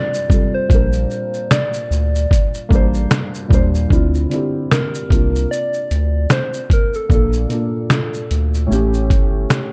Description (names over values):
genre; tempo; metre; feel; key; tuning
lo-fi hip hop; 75 BPM; 4/4; swing 57% on 16ths; unclear; A4 = 439 Hz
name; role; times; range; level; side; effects
soft struck synth lead; melody; 0.0-9.5 s; A4 to D5; -26 LUFS; equal; chorus
felt-muted upright piano; accompaniment; 0.0-9.7 s; A2 to C5; -24 LUFS; equal; cassette tape
trip hop sampler-style drum kit; drums; 0.1-9.7 s; finger snaps, hi-hat, kick drum, shaker, snare drum; -18 LUFS; equal; vintage 12-bit sampler grit
round analog bass; bass; 0.7-9.5 s; G1 to Eb2; -20 LUFS; equal; none
room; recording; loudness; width
digital ambience; dark, warm production; -17 LUFS; mono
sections
0.0-3.9 A section; 3.9-9.7 B section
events
none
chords
0.0 C7sus4; 0.7 Bb6; 3.9 Dm9; 5.1 C9sus4; 7.1 Bbmaj7; 8.7 A7